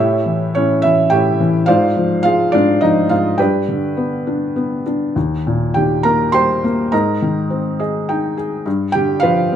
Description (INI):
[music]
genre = classical, lyrical solo piano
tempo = 104 BPM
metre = 3/4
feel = rubato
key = unclear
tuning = A4 = 440 Hz
[part]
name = felt-muted upright piano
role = solo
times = 0.0-9.6 s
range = Eb2 to C6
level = -14 LUFS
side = equal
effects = none
[sound]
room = light reverb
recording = close, detailed microphones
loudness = -14 LUFS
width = side -9 dB against mid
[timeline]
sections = 0.0-9.6 A section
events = felt piano fill 7.5-8.7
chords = 0.0 A7; 1.7 Dm7b5/Ab; 3.4 G; 5.2 Eb; 6.9 Abadd9; 8.7 G7